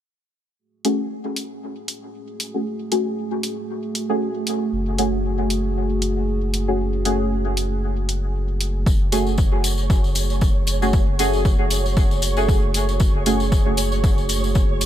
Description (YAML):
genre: dub techno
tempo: 116 BPM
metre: 4/4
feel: swing 56% on 16ths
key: F# minor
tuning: A4 = 441 Hz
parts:
  - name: dark analog pad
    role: sustained chords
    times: 2.2-14.9 s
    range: A3 to G#4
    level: -28 LUFS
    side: right 2 dB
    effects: chorus, sidechain pumping
  - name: deep mellow chord stab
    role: stabs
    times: 0.8-13.5 s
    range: A3 to G#4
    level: -25 LUFS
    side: equal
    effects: chorus, phaser, sidechain pumping, dub echo
  - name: electronic hi-hat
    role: drums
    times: 0.8-14.9 s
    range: none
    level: -26 LUFS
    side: equal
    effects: overdrive, small room ambience
  - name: warm sub bass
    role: bass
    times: 4.7-14.9 s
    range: F#1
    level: -23 LUFS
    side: equal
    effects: sidechain pumping
  - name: electronic kick drum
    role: drums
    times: 8.9-14.7 s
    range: none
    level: -18 LUFS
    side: equal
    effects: overdrive, small room ambience
  - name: tambourine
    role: percussion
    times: 8.9-14.9 s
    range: none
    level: -29 LUFS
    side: left 4 dB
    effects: none
  - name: flickering grainy texture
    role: texture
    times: 9.3-14.9 s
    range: C#5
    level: -30 LUFS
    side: right 4 dB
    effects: built-in reverb, sidechain pumping
room: little or no reverb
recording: none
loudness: -18 LUFS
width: side -11 dB against mid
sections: 0.6-8.9 A section; 8.9-14.9 B section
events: filter sweep on synth stab 0.6-8.9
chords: 0.6 F#madd9